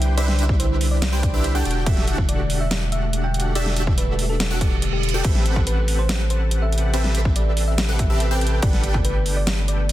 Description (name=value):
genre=future bass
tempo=142 BPM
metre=4/4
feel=half-time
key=E minor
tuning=A4 = 440 Hz
part: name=thumb-piano-like synth pluck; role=melody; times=0.0-9.9 s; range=G4 to G5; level=-31 LUFS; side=equal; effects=chorus, sidechain pumping, tape echo
part: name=ethereal airy pad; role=sustained chords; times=0.0-9.9 s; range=B2 to F#5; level=-32 LUFS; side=equal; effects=ensemble chorus, built-in reverb, sidechain pumping
part: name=supersaw stab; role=riff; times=0.0-9.9 s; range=C4 to G5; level=-27 LUFS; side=equal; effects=sidechain pumping
part: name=saturated sub bass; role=bass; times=0.0-9.9 s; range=E1 to C2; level=-22 LUFS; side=equal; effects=sidechain pumping
part: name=dubstep drum kit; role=drums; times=0.0-9.9 s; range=crash cymbal, hi-hat, snare drum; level=-27 LUFS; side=equal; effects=small room ambience
part: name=electronic kick drum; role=drums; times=0.5-9.0 s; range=none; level=-21 LUFS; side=equal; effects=small room ambience
part: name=reverse cymbal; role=sound effects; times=4.6-5.2 s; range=none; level=-31 LUFS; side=right 8 dB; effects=none
room=digital ambience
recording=dense, heavily limited modern master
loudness=-18 LUFS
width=side -14 dB against mid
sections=0.0-9.9 A section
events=reverse cymbal 4.6-5.2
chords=0.0 Cmaj9; 1.7 Em11; 5.2 Am9; 8.6 Gmaj9